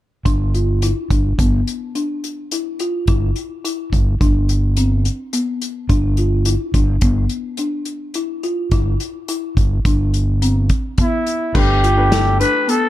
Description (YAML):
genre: progressive instrumental, band music in an uneven meter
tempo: 106 BPM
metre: 5/4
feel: straight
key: G mixolydian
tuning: A4 = 440 Hz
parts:
  - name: folk marimba with medium mallets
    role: arpeggios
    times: 0.3-12.9 s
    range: B3 to F4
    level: -22 LUFS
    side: left 2 dB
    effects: none
  - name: overdriven fingered electric bass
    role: bass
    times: 0.3-12.4 s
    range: G1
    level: -17 LUFS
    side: equal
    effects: none
  - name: unplugged drum kit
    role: drums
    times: 0.3-12.8 s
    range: crash cymbal, hi-hat, kick drum, snare drum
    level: -19 LUFS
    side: equal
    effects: none
  - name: growling trumpet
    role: melody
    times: 11.0-12.9 s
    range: E4 to B4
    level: -17 LUFS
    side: equal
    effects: none
  - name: warm concert grand piano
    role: accompaniment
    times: 11.5-12.8 s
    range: A3 to B4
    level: -25 LUFS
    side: left 1 dB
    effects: none
room: small room ambience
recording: dark, warm production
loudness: -16 LUFS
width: side -14 dB against mid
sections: 0.3-11.6 A section; 11.6-12.9 B section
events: none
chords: 0.3 G; 3.1 G6; 5.9 G; 8.7 G6; 11.6 G